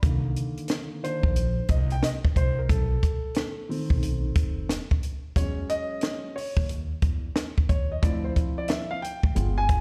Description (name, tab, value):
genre	hip hop, jazz-hop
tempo	90 BPM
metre	4/4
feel	swing 66% on 16ths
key	unclear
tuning	A4 = 440 Hz
part	dark grand piano	accompaniment	0.0-9.8 s	D3 to Ab5	-34 LUFS	equal	plate reverb
part	upright bass	bass	0.0-9.8 s	F1 to E2	-29 LUFS	equal	none
part	compact cocktail drum kit	drums	0.0-9.8 s	hi-hat, kick drum, snare drum	-27 LUFS	equal	none
room	little or no reverb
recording	played on a big sound system in a bare room, stone room reverb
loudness	-26 LUFS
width	mono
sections	0.0-9.8 A section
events	grand piano solo 0.0-9.8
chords	0.0 Cm9; 2.7 B7b9; 5.4 E69; 8.0 Dm7